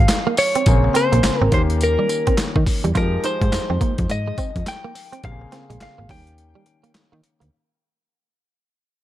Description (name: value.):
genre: R&B, new jack swing.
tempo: 105 BPM.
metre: 4/4.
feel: swing 62% on 16ths.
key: unclear.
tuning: A4 = 442 Hz.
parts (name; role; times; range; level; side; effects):
direct-recorded clean electric guitar; melody; 0.0-6.9 s; Bb4 to G5; -22 LUFS; equal; wide subtle chorus.
warm concert grand piano; accompaniment; 0.0-7.5 s; Db3 to Ab4; -27 LUFS; left 4 dB; none.
slap-like FM bass; bass; 0.0-7.5 s; Ab1 to Eb3; -20 LUFS; equal; none.
boom bap sampler-style drum kit; drums; 0.1-7.5 s; handclaps, hi-hat, kick drum, snare drum, tambourine; -20 LUFS; equal; overdrive.
direct-recorded clean electric guitar; riff; 0.3-7.5 s; G3 to F4; -26 LUFS; right 7 dB; analog chorus.
room: digital ambience.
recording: dark, warm production.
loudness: -16 LUFS.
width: side -13 dB against mid.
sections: 0.0-7.5 A section.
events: fade-out 0.0-7.5; break 6.4-7.5.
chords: 0.0 Fm9; 0.7 Bbm9; 1.5 Eb7; 3.0 Fm9; 5.2 Bbm9; 6.1 Eb7.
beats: 0.09 | 0.66 1.24 1.81 2.38 | 2.95 3.52 4.09 4.66 | 5.24 5.81 6.38 6.95.